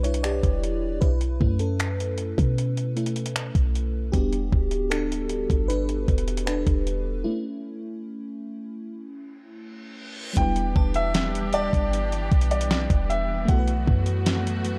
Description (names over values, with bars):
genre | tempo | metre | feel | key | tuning
contemporary R&B | 77 BPM | 4/4 | straight | E dorian | A4 = 444 Hz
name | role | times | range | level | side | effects
FM electric piano with soft pad layer | accompaniment | 0.0-14.8 s | F#3 to D5 | -32 LUFS | equal | chorus
clean 808-style bass | bass | 0.0-14.8 s | D1 to B2 | -28 LUFS | equal | none
clean 12-bit digital drum machine | drums | 0.0-14.8 s | finger snaps, hi-hat, kick drum, snare drum | -27 LUFS | equal | none
reverse cymbal | sound effects | 9.6-10.4 s | none | -42 LUFS | equal | none
warm baby grand piano | melody | 10.4-14.8 s | D5 to G5 | -31 LUFS | equal | delay
clear studio string section | sustained chords | 10.4-14.8 s | E3 to G4 | -36 LUFS | equal | none
glassy synth bell | texture | 10.8-13.8 s | A5 | -44 LUFS | equal | chorus, delay
room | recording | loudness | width
little or no reverb | dark, warm production | -24 LUFS | mono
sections
0.0-10.4 A section; 10.4-14.8 B section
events
FM electric piano solo 0.0-10.4; break 7.3-10.4; reverse cymbal 9.7-10.4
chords
0.0 Em7; 1.0 B7sus4; 4.1 Em7; 7.3 A; 10.4 Em7; 13.5 B7sus4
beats
0.24 | 1.02 1.80 2.58 3.36 | 4.14 4.92 5.69 6.47 | 7.25 8.03 8.81 9.59 | 10.37 11.15 11.93 12.71 | 13.49 14.27